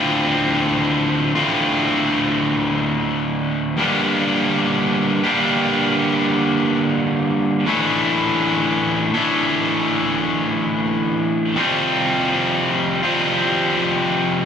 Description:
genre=rock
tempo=62 BPM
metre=4/4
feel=straight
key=D minor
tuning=A4 = 441 Hz
part: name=distorted electric guitar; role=solo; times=0.0-14.5 s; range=D2 to A4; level=-16 LUFS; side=equal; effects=overdrive
room=wet studio reverb, RT60 0.6 s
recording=band playing live in one room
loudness=-16 LUFS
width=side -7 dB against mid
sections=0.0-14.5 A section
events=none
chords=0.0 Dm7; 3.8 Gm; 7.7 Asus4; 11.6 Fsus2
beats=0.86 1.84 2.81 | 3.79 4.76 5.74 6.71 | 7.69 8.66 9.63 10.60 | 11.58 12.55 13.52

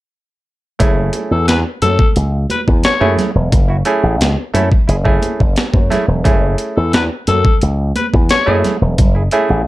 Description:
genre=funk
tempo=88 BPM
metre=4/4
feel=straight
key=F# minor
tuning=A4 = 440 Hz
part: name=bright clav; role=stabs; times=0.8-9.6 s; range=A3 to A4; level=-17 LUFS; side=right 2 dB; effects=none
part: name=slap bass with an envelope filter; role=bass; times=0.8-9.6 s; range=E1 to F#2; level=-15 LUFS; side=equal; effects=none
part: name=breakbeat sampler-style drum kit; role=drums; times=0.8-9.5 s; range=hi-hat, kick drum, snare drum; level=-14 LUFS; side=equal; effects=overdrive
part: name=congas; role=percussion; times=0.8-9.7 s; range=none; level=-24 LUFS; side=right 4 dB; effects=none
part: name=raspy tenor saxophone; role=second line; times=1.3-8.6 s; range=A4 to C#5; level=-17 LUFS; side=left 4 dB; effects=none
room=digital ambience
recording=dark, warm production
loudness=-12 LUFS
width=side -17 dB against mid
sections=0.8-9.7 A section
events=none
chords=0.8 F#m7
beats=| 0.80 1.48 2.16 2.85 | 3.53 4.21 4.89 5.57 | 6.26 6.94 7.62 8.30 | 8.99

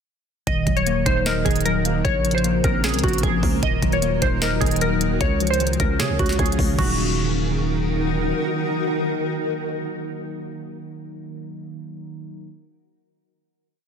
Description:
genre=hip hop, trap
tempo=152 BPM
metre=4/4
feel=half-time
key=Eb dorian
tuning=A4 = 441 Hz
part: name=glassy wavetable pluck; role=melody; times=0.5-7.9 s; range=Gb4 to Eb5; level=-24 LUFS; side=equal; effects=chorus, ping-pong delay
part: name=muted felt-like synth keys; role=accompaniment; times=0.5-12.5 s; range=Db3 to Eb5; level=-26 LUFS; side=right 1 dB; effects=chorus
part: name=granular cloud pad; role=sustained chords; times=1.0-10.6 s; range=Eb3 to Bb4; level=-27 LUFS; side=equal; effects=built-in reverb
part: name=growling 808-style bass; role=bass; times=0.5-8.3 s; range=Eb1 to Db3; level=-24 LUFS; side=equal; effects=none
part: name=trap drum kit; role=drums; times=0.5-6.9 s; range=crash cymbal, hi-hat, kick drum, snare drum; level=-24 LUFS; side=equal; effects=none
room=light reverb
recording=dense, heavily limited modern master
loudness=-19 LUFS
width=side -7 dB against mid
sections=0.5-6.8 hook; 6.8-9.9 final chord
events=none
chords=0.5 Ebm; 2.0 Bbmadd9; 3.6 Ebm; 5.2 Db; 6.8 Ebm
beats=| 0.47 0.86 1.26 1.65 | 2.05 2.44 2.84 3.23 | 3.63 4.02 4.42 4.81 | 5.21 5.60 6.00 6.39 | 6.79 7.18 7.58 7.97 | 8.37 8.76 9.15 9.55

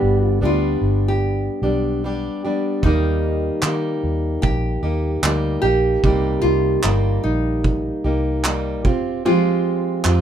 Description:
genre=acoustic pop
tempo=75 BPM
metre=4/4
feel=swing 55% on 16ths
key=C minor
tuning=A4 = 440 Hz
part: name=nylon-string guitar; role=melody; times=0.0-10.2 s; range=Eb4 to G4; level=-24 LUFS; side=right 1 dB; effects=none
part: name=fingerpicked plugged-in steel-string acoustic guitar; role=accompaniment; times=0.0-10.2 s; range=G2 to G4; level=-21 LUFS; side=equal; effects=none
part: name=vintage muted fingered electric bass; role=bass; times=0.0-10.2 s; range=F1 to Eb3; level=-21 LUFS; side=equal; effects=none
part: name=loose indie drum kit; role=drums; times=2.8-10.2 s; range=handclaps, kick drum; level=-21 LUFS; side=right 1 dB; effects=none
room=light reverb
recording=minimal, uncompressed stereo recording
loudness=-17 LUFS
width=side -9 dB against mid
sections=0.0-10.2 A section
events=none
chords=0.0 G; 2.8 Eb; 6.0 Cm7; 8.9 Fmadd9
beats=0.43 1.23 2.03 | 2.83 3.63 4.44 5.24 | 6.04 6.84 7.65 8.45 | 9.25 10.05

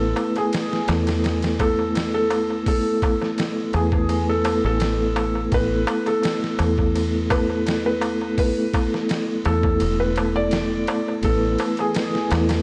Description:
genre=trip hop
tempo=84 BPM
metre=4/4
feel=straight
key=unclear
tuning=A4 = 440 Hz
part: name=felt-muted upright piano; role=melody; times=0.0-12.3 s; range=G#4 to D5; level=-28 LUFS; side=equal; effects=tape echo
part: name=vibraphone with soft mallets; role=accompaniment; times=0.0-12.6 s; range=A3 to B4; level=-25 LUFS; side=equal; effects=harmonic tremolo, low-pass filter
part: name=deep dub fingered electric bass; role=bass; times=0.0-12.6 s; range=E1 to E2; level=-27 LUFS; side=equal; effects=none
part: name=trip hop sampler-style drum kit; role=drums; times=0.2-12.6 s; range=hi-hat, kick drum, ride cymbal, snare drum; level=-30 LUFS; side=equal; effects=studio reverb
part: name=darbuka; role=percussion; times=0.2-12.6 s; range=none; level=-33 LUFS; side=equal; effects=none
part: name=deep dark ambient pad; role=sustained chords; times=11.7-12.6 s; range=E3 to E4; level=-39 LUFS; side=equal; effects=none
room=small room reverb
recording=dry, gritty hardware recording, cassette tape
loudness=-22 LUFS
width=mono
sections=0.0-12.6 A section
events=filter sweep on vibraphone 0.0-12.6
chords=0.0 Asus2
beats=0.53 1.24 1.95 | 2.67 3.38 4.10 4.81 | 5.53 6.24 6.95 7.67 | 8.38 9.10 9.81 10.53 | 11.24 11.95

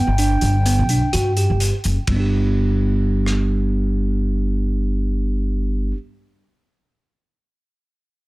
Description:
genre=progressive instrumental, band music in an uneven meter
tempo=127 BPM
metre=5/4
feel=straight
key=G major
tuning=A4 = 441 Hz
part: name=mellow baroque flute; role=melody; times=0.0-1.6 s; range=G5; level=-26 LUFS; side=equal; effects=digital delay
part: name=bell-like tine electric piano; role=arpeggios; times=0.0-6.0 s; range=G3 to G4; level=-22 LUFS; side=right 3 dB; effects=none
part: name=upright bass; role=bass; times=0.1-5.9 s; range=F#1 to G2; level=-19 LUFS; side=equal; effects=none
part: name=crunchy breakbeat drum kit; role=drums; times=0.2-3.4 s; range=hi-hat, kick drum, ride cymbal, rim click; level=-26 LUFS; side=equal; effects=none
room=light reverb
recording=dense, heavily limited modern master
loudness=-17 LUFS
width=side -20 dB against mid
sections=0.0-2.1 A section; 2.1-4.4 B section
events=none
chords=0.0 Gmaj7; 2.1 G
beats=0.18 0.66 1.13 1.60 | 2.08 2.55 3.03 3.50 3.97

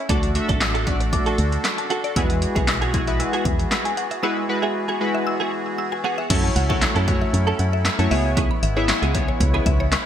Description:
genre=dance-pop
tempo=116 BPM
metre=4/4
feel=straight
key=F# minor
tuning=A4 = 437 Hz
part: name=accordion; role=sustained chords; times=0.0-10.1 s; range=C#3 to A4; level=-29 LUFS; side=equal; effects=light tremolo tuning, sidechain pumping
part: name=mallet-like synth pluck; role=arpeggios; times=0.0-10.0 s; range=C#5 to E6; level=-30 LUFS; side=left 3 dB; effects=chorus, sidechain pumping, ping-pong delay
part: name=chorused retro synth keys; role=accompaniment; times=0.1-9.8 s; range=G#3 to E5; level=-25 LUFS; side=left 1 dB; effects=sidechain pumping
part: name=direct-recorded clean electric guitar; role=riff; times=0.1-10.0 s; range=B3 to A4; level=-29 LUFS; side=right 5 dB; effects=ensemble chorus
part: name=organ-like FM bass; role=bass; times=0.1-10.0 s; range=G#1 to F#2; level=-22 LUFS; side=equal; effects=sidechain pumping
part: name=punchy analog drum machine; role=drums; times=0.1-10.1 s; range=crash cymbal, handclaps, hi-hat, kick drum, snare drum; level=-22 LUFS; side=equal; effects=gated reverb
room=light reverb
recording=bright 1980s-style digital production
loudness=-18 LUFS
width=side -10 dB against mid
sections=0.0-6.3 A section; 6.3-10.1 B section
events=none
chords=0.1 D; 2.2 Eadd9; 6.3 F#m7; 8.1 C#m7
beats=| 0.10 0.61 1.13 1.65 | 2.16 2.68 3.20 3.71 | 4.23 4.75 5.27 5.78 | 6.30 6.82 7.34 7.85 | 8.37 8.89 9.40 9.92

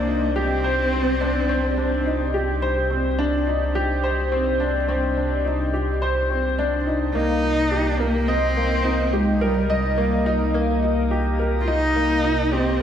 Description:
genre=electronica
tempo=106 BPM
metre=4/4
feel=straight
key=C minor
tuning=A4 = 440 Hz
part: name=dark cello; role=melody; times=0.0-2.3, 7.1-12.8 s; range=G3 to F4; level=-24 LUFS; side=equal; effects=diffuse ambient delay, shimmer reverb
part: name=warm upright piano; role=riff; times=0.0-12.8 s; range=Bb3 to Eb5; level=-22 LUFS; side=left 1 dB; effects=analog chorus, diffuse ambient delay, shimmer reverb
part: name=dark detuned saw bass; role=bass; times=0.0-12.8 s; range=C2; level=-25 LUFS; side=equal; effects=none
room=wet plate reverb, RT60 1.1 s, digital ambience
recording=dreamy mix soaked in reverb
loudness=-19 LUFS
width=side -9 dB against mid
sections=0.0-12.8 A section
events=none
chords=0.0 Cmadd9; 7.2 Eb/C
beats=| 0.36 0.92 1.49 2.06 | 2.62 3.19 3.75 4.32 | 4.88 5.45 6.02 6.58 | 7.15 7.72 8.28 8.85 | 9.41 9.98 10.55 11.11 | 11.68 12.24 12.81

